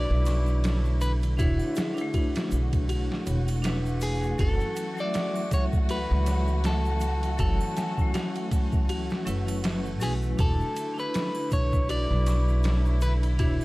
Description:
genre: trip hop.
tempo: 80 BPM.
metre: 4/4.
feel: swing 57% on 16ths.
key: unclear.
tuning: A4 = 440 Hz.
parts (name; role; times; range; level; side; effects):
electric guitar at the edge of break-up; melody; 0.0-13.6 s; E4 to D5; -33 LUFS; left 1 dB; tape echo.
vibraphone with hard mallets; accompaniment; 0.0-13.6 s; F#3 to E5; -34 LUFS; left 1 dB; tremolo, tape echo.
dark chamber string section; sustained chords; 0.0-13.6 s; D3 to F#4; -37 LUFS; equal; none.
music box; arpeggios; 0.0-13.6 s; E4 to C#6; -39 LUFS; left 3 dB; tape echo.
upright bass; bass; 0.0-13.6 s; E1 to C#2; -26 LUFS; equal; none.
boom bap sampler-style drum kit; drums; 0.3-13.6 s; hi-hat, kick drum, ride cymbal, snare drum; -29 LUFS; equal; small room ambience.
triangle and egg shaker; percussion; 0.3-13.6 s; none; -48 LUFS; right 1 dB; none.
room: small room ambience.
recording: dark, warm production.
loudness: -24 LUFS.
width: side -20 dB against mid.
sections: 0.0-13.6 A section.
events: none.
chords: 0.0 E7sus4; 4.4 F#m7; 10.4 E7sus4.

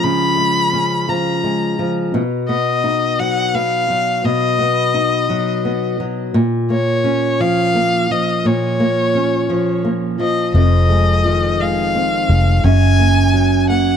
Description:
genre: pop.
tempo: 57 BPM (dotted quarters).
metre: 6/8.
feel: straight.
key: unclear.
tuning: A4 = 440 Hz.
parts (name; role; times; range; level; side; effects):
warm violin; melody; 0.0-14.0 s; Db5 to Cb6; -18 LUFS; left 2 dB; tape echo.
flamenco guitar; accompaniment; 0.0-14.0 s; F2 to Eb4; -17 LUFS; equal; none.
vintage muted fingered electric bass; bass; 10.5-14.0 s; F1 to Gb1; -14 LUFS; equal; none.
room: light reverb.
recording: dry, close 1970s-style studio recording.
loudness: -14 LUFS.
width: side -8 dB against mid.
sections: 0.0-10.5 A section; 10.5-14.0 B section.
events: none.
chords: 0.0 Db; 2.1 Cb; 6.3 Bbm; 10.5 Fm7; 12.6 Gb.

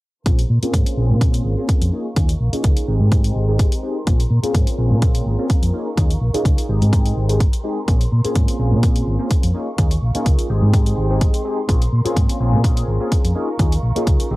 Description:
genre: filtered disco house.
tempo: 126 BPM.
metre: 4/4.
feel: swing 54% on 16ths.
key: Bb dorian.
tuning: A4 = 442 Hz.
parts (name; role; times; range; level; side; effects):
funky polysynth comp; accompaniment; 0.3-14.4 s; Ab3 to Ab4; -24 LUFS; equal; chorus, phaser, sidechain pumping, low-pass filter.
rich studio violin section; sustained chords; 0.3-14.4 s; Bb4 to Db6; -34 LUFS; right 1 dB; sidechain pumping, low-pass filter.
hollow-body short-scale fingered electric bass; bass; 0.3-14.4 s; Ab1 to Bb2; -18 LUFS; equal; tube saturation, sidechain pumping, low-pass filter.
electronic hi-hat; drums; 0.3-14.3 s; none; -31 LUFS; left 2 dB; overdrive, sidechain pumping on hats.
electronic kick drum; drums; 0.3-14.2 s; none; -16 LUFS; equal; overdrive.
room: digital ambience.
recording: dry, gritty hardware recording.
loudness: -15 LUFS.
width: side -19 dB against mid.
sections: 0.3-14.4 A section.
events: filter sweep 0.3-14.4.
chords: 0.3 Bbm9; 1.9 Eb9sus4; 2.9 Abmaj7; 4.1 Bbm9; 5.7 Eb9sus4; 6.7 Abmaj7; 7.9 Bbm9; 9.5 Eb9sus4; 10.5 Abmaj7; 11.7 Bbm9; 13.4 Eb9sus4.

